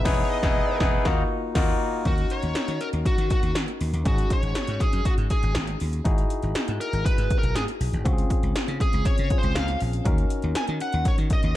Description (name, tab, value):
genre	1980s-style pop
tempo	120 BPM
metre	4/4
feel	straight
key	Eb dorian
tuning	A4 = 440 Hz
part	smooth overdriven lead guitar	melody	0.0-11.6 s	Gb4 to Ab5	-30 LUFS	equal	ping-pong delay
part	barky tine electric piano	accompaniment	0.0-11.6 s	Bb3 to B4	-29 LUFS	left 2 dB	none
part	slap bass	bass	0.0-11.5 s	E1 to Eb3	-27 LUFS	equal	none
part	80s electronic pad drums	drums	0.1-11.5 s	crash cymbal, hi-hat, kick drum, snare drum	-24 LUFS	equal	none
room	light reverb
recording	dark, warm production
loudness	-22 LUFS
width	side -14 dB against mid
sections	0.0-2.1 A section; 2.1-11.6 B section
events	band accent 0.1-2.1; lead electric guitar solo 2.1-11.6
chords	0.0 Emaj7; 1.1 Ebmadd9; 2.1 Ebm7; 4.1 Ab7sus4; 6.1 Emaj9/G#; 8.1 Dbmaj7; 10.1 Ebm7